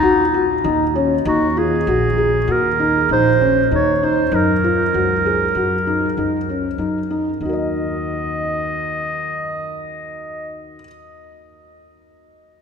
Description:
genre	contemporary instrumental, chamber music in an uneven meter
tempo	97 BPM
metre	5/4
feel	straight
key	Eb dorian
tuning	A4 = 440 Hz
part	clear clarinet	melody	0.0-10.8 s	Eb4 to Eb5	-19 LUFS	right 2 dB	none
part	felt-muted upright piano	arpeggios	0.0-10.9 s	Db4 to Eb5	-20 LUFS	left 1 dB	none
part	upright bass	bass	0.0-10.7 s	Bb1 to Gb2	-24 LUFS	left 1 dB	none
room	wet cathedral reverb, RT60 6.0 s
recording	recorded in a church or concert hall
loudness	-16 LUFS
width	side -6 dB against mid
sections	0.0-1.3 A section; 1.3-7.4 B section; 7.4-10.5 C section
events	none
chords	0.0 Ebm; 1.3 Eb5; 4.3 Gb; 7.4 Ebm

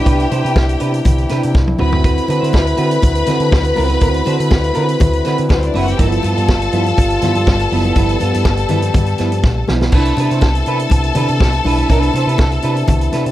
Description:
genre	disco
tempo	122 BPM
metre	4/4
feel	straight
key	C major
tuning	A4 = 440 Hz
part	bright studio string section	second line	0.0-13.3 s	B3 to B5	-21 LUFS	left 2 dB	tape echo
part	clean electric guitar	accompaniment	0.0-13.3 s	F3 to C5	-21 LUFS	right 4 dB	none
part	dark French horn section	sustained chords	0.0-13.3 s	C3 to B4	-21 LUFS	left 2 dB	none
part	picked electric bass with an envelope filter	bass	0.1-13.3 s	F#1 to D3	-17 LUFS	equal	none
part	vintage drum kit	drums	0.1-13.3 s	crash cymbal, hi-hat, kick drum, snare drum, toms	-16 LUFS	equal	none
part	congas	percussion	0.3-13.2 s	none	-26 LUFS	left 4 dB	none
room	light reverb, studio ambience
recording	dark, warm production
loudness	-12 LUFS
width	side -14 dB against mid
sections	0.0-9.9 A section; 9.9-13.3 A section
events	drum fill 1.5-2.0, 9.4-9.9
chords	0.0 Cmaj9; 1.8 D13; 6.0 G13; 9.9 Cmaj9

